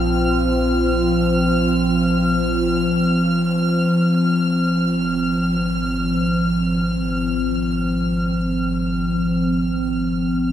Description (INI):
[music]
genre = ambient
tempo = free time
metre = none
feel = none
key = F minor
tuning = A4 = 435 Hz
[part]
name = round analog bass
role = bass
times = 0.0-10.5 s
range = Ab1 to Bb1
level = -27 LUFS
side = equal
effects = none
[part]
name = analog drone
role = drone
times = 0.0-10.5 s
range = F3 to C4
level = -18 LUFS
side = equal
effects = chorus
[part]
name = warm studio violin section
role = texture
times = 0.0-10.5 s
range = F6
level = -26 LUFS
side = equal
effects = none
[sound]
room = wet huge ambient reverb, RT60 8.6 s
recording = none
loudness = -17 LUFS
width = side -10 dB against mid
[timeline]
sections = 0.0-10.5 A section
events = fade-out on analog synth bass 0.0-10.5; fade-out on violin section 0.0-10.5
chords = 0.0 Bb5; 3.9 Fm/Ab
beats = free time